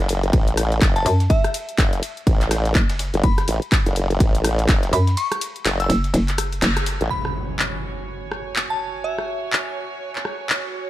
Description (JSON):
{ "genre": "bass house", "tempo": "124 BPM", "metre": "4/4", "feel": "swing 60% on 16ths", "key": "F# minor", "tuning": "A4 = 441 Hz", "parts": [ { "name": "formant-sweep wobble bass", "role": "bass", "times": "0.0-7.1 s", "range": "F#1 to A1", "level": "-20 LUFS", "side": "equal", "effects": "chorus, overdrive, sidechain pumping" }, { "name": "dusty soul sampler-style drum kit", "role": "drums", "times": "0.1-7.0 s", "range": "ride cymbal, snare drum", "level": "-36 LUFS", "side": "right 2 dB", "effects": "high-pass filter on snare, high-pass filter on cymbals" }, { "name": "house drum kit", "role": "drums", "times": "0.1-10.6 s", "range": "handclaps, hi-hat, rim click", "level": "-25 LUFS", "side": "left 1 dB", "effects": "none" }, { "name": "electronic kick drum", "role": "drums", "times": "0.3-4.8 s", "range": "none", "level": "-18 LUFS", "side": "equal", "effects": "none" }, { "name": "glassy synth bell", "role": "melody", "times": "1.0-9.7 s", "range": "E5 to E6", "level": "-27 LUFS", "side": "left 1 dB", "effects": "chorus, ping-pong delay" }, { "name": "hollow knocking FM bass", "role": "bass", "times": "1.1-7.0 s", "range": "F#1 to F#2", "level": "-19 LUFS", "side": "equal", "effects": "overdrive, sidechain pumping" }, { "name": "impact", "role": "sound effects", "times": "7.1-9.0 s", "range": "none", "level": "-31 LUFS", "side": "equal", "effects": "none" }, { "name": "dark studio string section", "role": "texture", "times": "7.1-10.9 s", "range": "F#4 to G#5", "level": "-31 LUFS", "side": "right 5 dB", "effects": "sidechain pumping" } ], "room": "digital ambience", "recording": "none", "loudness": "-18 LUFS", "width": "side -14 dB against mid", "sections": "0.0-7.1 A section; 7.1-10.9 B section", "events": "drop 0.0-7.1; break 5.2-7.1; band accent 6.6; impact 7.1-9.0", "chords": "0.0 F#m; 7.1 F#5", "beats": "0.33 0.82 | 1.30 1.78 2.27 2.75 | 3.24 3.72 4.20 4.69 | 5.17 5.66 6.14 6.62 | 7.11 7.59 8.07 8.56 | 9.04 9.53 10.01 10.49" }